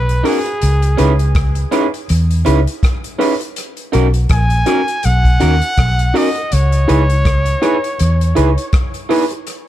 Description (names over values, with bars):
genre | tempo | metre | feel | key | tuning
lovers rock reggae | 81 BPM | 4/4 | swing 56% on 16ths | unclear | A4 = 437 Hz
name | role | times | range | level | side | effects
breathy trumpet | melody | 0.0-8.7 s | G#4 to G#5 | -21 LUFS | equal | tape echo
vintage muted fingered electric bass | bass | 0.0-8.6 s | A#1 to E2 | -13 LUFS | equal | none
vintage drum kit | drums | 0.1-9.7 s | hi-hat, kick drum, rim click | -19 LUFS | equal | tape echo
mellow tine electric piano | accompaniment | 0.2-9.2 s | C#4 to B4 | -21 LUFS | left 6 dB | none
electric guitar through a small old amp | stabs | 0.2-9.3 s | C#4 to B4 | -20 LUFS | right 8 dB | none
room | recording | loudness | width
small room ambience | dark, warm production | -12 LUFS | side -13 dB against mid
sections
0.0-9.7 A section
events
none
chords
0.0 Bmaj7; 0.6 C#m7; 3.6 Bmaj7; 6.5 C#m7